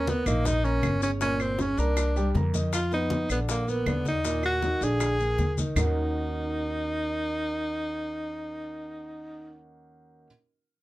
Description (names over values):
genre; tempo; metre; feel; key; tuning
Afro-Cuban jazz; 158 BPM; 4/4; straight; Eb minor; A4 = 441 Hz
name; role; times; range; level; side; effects
breathy tenor saxophone; melody; 0.0-9.6 s; Bb3 to Ab4; -29 LUFS; equal; none
dark upright piano; accompaniment; 0.0-10.3 s; Bb2 to Bb5; -33 LUFS; right 2 dB; none
upright bass; bass; 0.0-10.3 s; G1 to F2; -29 LUFS; equal; none
bongos; percussion; 0.1-5.9 s; none; -38 LUFS; left 4 dB; none
congas; percussion; 0.1-5.9 s; none; -33 LUFS; left 1 dB; none
maracas; percussion; 0.1-5.9 s; none; -40 LUFS; left 9 dB; none
claves; percussion; 0.3-5.9 s; none; -36 LUFS; right 2 dB; none
room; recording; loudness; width
light reverb; none; -25 LUFS; side -16 dB against mid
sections
0.0-2.7 A section; 2.7-5.8 B section; 5.8-8.8 C section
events
none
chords
0.0 Eb5; 1.2 Gdim; 2.0 C5; 2.7 Bmaj7#11; 3.5 Bb; 5.8 Ebm7